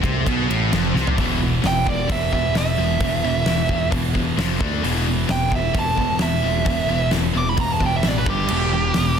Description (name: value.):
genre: hard rock.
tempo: 131 BPM.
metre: 4/4.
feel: straight.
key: E minor.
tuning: A4 = 439 Hz.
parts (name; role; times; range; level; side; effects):
high-gain distorted guitar; riff; 0.0-9.2 s; E2 to D4; -27 LUFS; left 12 dB; distortion.
high-gain distorted guitar; riff; 0.0-9.2 s; E2 to E3; -28 LUFS; right 1 dB; distortion.
sludgy distorted guitar; riff; 0.0-9.2 s; E2 to D4; -26 LUFS; right 10 dB; overdrive.
picked electric bass; bass; 0.0-9.2 s; E1 to D2; -24 LUFS; left 1 dB; none.
huge arena drum kit; drums; 0.0-9.1 s; crash cymbal, hi-hat, kick drum, ride cymbal, snare drum, toms; -24 LUFS; left 1 dB; none.
nasal lead guitar with a parked wah; melody; 1.7-9.2 s; G4 to D6; -23 LUFS; right 4 dB; overdrive, slapback echo.
room: studio ambience.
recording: dense, heavily limited modern master.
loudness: -18 LUFS.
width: side -7 dB against mid.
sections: 0.0-1.2 A section; 1.2-9.2 B section.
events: drum fill 0.9; lead electric guitar solo 1.2-9.2.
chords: 0.0 N.C.; 1.2 E5; 4.4 F5; 4.6 D5; 4.8 E5; 8.3 G5; 8.5 Em.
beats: 0.26 0.72 | 1.18 1.63 2.09 2.55 | 3.01 3.47 3.92 4.38 | 4.84 5.30 5.75 6.21 | 6.67 7.12 7.58 8.04 | 8.49 8.95.